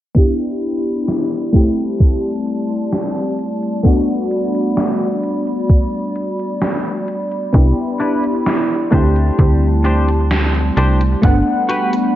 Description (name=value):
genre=vaporwave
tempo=65 BPM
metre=4/4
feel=straight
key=G major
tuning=A4 = 439 Hz
part: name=mellow FM electric piano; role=accompaniment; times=0.1-12.2 s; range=A3 to F#5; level=-18 LUFS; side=left 1 dB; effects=analog chorus, analog delay
part: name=warbly tape-like pad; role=sustained chords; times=0.6-12.2 s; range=G3 to C6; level=-24 LUFS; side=right 1 dB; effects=chorus, built-in reverb
part: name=electronic kick drum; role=drums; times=0.2-11.4 s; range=none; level=-12 LUFS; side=equal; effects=overdrive
part: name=gated 80s digital drum machine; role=drums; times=0.2-12.1 s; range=hi-hat, snare drum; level=-21 LUFS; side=right 1 dB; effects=gated reverb, gated reverb snare, overdrive
part: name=slap-like FM bass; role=bass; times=7.5-11.4 s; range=G1 to D2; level=-14 LUFS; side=equal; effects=none
part: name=semi-hollow electric guitar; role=riff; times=8.0-11.9 s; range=D4 to C5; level=-23 LUFS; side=left 2 dB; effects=analog chorus, vintage 12-bit sampler grit, analog delay
room=light reverb, digital ambience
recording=cassette tape, low-pass filter, nothing above 7.7 kHz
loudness=-14 LUFS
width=side -13 dB against mid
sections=0.2-12.2 A section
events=filter sweep 0.2-12.2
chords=0.2 Cmaj9; 1.5 D7sus4; 3.9 Gmaj7; 7.5 Cmaj9; 8.9 D7sus4; 11.2 Gmaj7